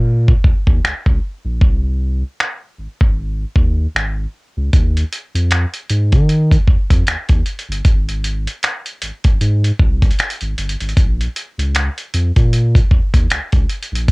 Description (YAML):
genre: contemporary R&B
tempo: 77 BPM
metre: 4/4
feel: swing 58% on 16ths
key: Bb dorian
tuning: A4 = 440 Hz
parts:
  - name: saturated sub bass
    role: bass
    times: 0.0-14.1 s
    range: G1 to Eb3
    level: -17 LUFS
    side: equal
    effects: none
  - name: dusty soul sampler-style drum kit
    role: drums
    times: 0.3-14.1 s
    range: finger snaps, hi-hat, kick drum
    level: -14 LUFS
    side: equal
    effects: cassette tape
room: little or no reverb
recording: home recording on cassette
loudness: -14 LUFS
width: side -28 dB against mid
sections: 0.0-14.1 A section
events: none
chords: none